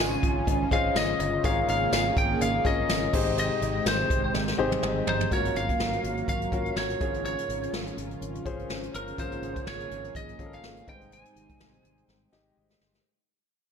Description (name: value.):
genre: 1980s-style pop.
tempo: 124 BPM.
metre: 4/4.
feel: swing 55% on 16ths.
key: Ab major.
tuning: A4 = 440 Hz.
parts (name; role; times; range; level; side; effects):
lightly driven lead guitar; melody; 0.0-12.5 s; Bb4 to Ab5; -30 LUFS; left 1 dB; digital delay.
clear concert grand piano; accompaniment; 0.0-13.1 s; Ab2 to Bb5; -32 LUFS; left 5 dB; none.
warm analog pad; sustained chords; 0.0-13.0 s; C3 to G5; -34 LUFS; right 2 dB; chorus.
fretless electric bass; bass; 0.0-13.0 s; G1 to Ab1; -34 LUFS; equal; none.
jazz brush drum kit; drums; 0.2-13.0 s; crash cymbal, hi-hat, kick drum, snare drum, tambourine, toms; -30 LUFS; equal; gated reverb.
cowbell; percussion; 0.5-5.2 s; none; -42 LUFS; right 4 dB; none.
mellow synth brass; stabs; 5.3-13.0 s; F3 to Db5; -42 LUFS; right 2 dB; chorus.
room: light reverb, studio reverb.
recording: none.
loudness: -25 LUFS.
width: side -7 dB against mid.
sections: 0.0-5.3 A section; 5.3-13.1 B section.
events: drum fill 4.3-5.3, 12.1-13.1; grand piano fill 4.6-5.3, 12.1-13.1; fade-out 5.3-13.1.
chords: 0.0 Dbmaj7/Ab; 1.4 Bbm7/Ab; 3.1 Abmaj7; 5.3 Gbmaj7/Ab; 7.0 Dbmaj7/Ab; 9.2 Bbm7/Ab; 10.9 Abmaj7.